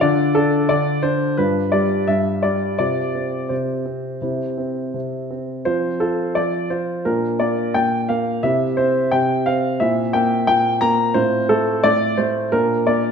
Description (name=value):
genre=classical-period piano sonatina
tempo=87 BPM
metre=4/4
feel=rubato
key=F major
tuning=A4 = 439 Hz
part: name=warm baby grand piano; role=solo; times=0.0-13.1 s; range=G2 to Bb5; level=-17 LUFS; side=equal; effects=none
room=wet recital hall reverb, RT60 1.4 s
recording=minimal, uncompressed stereo recording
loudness=-17 LUFS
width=side -6 dB against mid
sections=0.0-13.1 A section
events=none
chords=0.0 Dm; 1.4 G5; 2.8 F5/C; 4.2 C; 5.7 F5; 7.1 Bb; 8.4 C; 9.8 C7/Bb; 11.2 F/A; 12.5 Bb